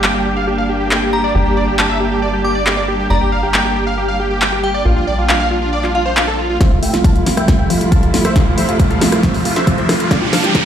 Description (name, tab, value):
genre	uplifting trance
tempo	137 BPM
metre	4/4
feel	straight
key	F major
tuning	A4 = 440 Hz
part	dense compressed supersaw	melody	0.0-10.6 s	F4 to Bb5	-19 LUFS	equal	sidechain pumping, low-pass filter, ping-pong delay
part	glassy synth bell	second line	0.0-6.5 s	F5 to D6	-23 LUFS	left 1 dB	chorus, tape echo
part	dark chamber string section	sustained chords	0.0-10.7 s	C2 to E4	-20 LUFS	right 1 dB	sidechain pumping
part	tight sequencer bass	bass	0.0-6.6 s	G1 to Bb1	-20 LUFS	equal	sidechain pumping
part	punchy analog drum machine	drums	0.0-10.6 s	handclaps, hi-hat, rim click, snare drum	-19 LUFS	equal	overdrive
part	wide unison pluck	arpeggios	6.6-10.6 s	F3 to F4	-21 LUFS	left 2 dB	sidechain pumping, tape echo
part	electronic kick drum	drums	6.6-10.6 s	none	-13 LUFS	equal	none
part	riser	sound effects	7.8-10.7 s	none	-22 LUFS	right 1 dB	none
room	digital ambience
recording	played on a big sound system in a bare room, large studio reverb, high-pass filter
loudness	-12 LUFS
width	side -9 dB against mid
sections	0.0-6.6 A section; 6.6-10.7 B section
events	build-up 6.6-10.7; drum fill 6.6-10.7; filter sweep on supersaw synth 6.6-10.7; filter sweep on synth arpeggio sound 6.6-10.7; filter sweep 6.6-10.7; riser 7.8-10.7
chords	0.0 Gm; 4.9 Bb6; 6.6 Fmaj7; 10.1 C7sus4